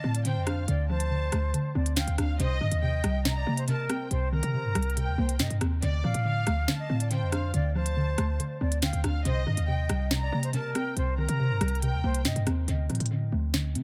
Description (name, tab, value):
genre	hip hop, drill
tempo	140 BPM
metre	4/4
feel	half-time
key	D phrygian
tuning	A4 = 440 Hz
part	mellow concert flute	melody	0.0-12.4 s	Bb4 to F5	-38 LUFS	equal	analog delay
part	warm studio violin section	second line	0.0-12.2 s	D5 to Bb5	-41 LUFS	equal	analog delay
part	hollow square pluck	accompaniment	0.0-13.8 s	C3 to D4	-34 LUFS	equal	chorus, low-pass filter, analog delay
part	hard-hitting 808-style bass	bass	0.0-13.8 s	C2 to D3	-30 LUFS	equal	none
part	drill drum kit	drums	0.1-13.8 s	hi-hat, rim click, snare drum	-36 LUFS	equal	analog delay
room	light reverb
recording	echo-heavy mix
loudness	-28 LUFS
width	mono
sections	0.0-12.7 A section; 12.7-13.8 B section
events	filter sweep on synth pluck 12.7-13.8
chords	0.0 Dm7; 2.4 Cm7; 5.8 Dm7; 9.3 Cm7; 12.7 Dm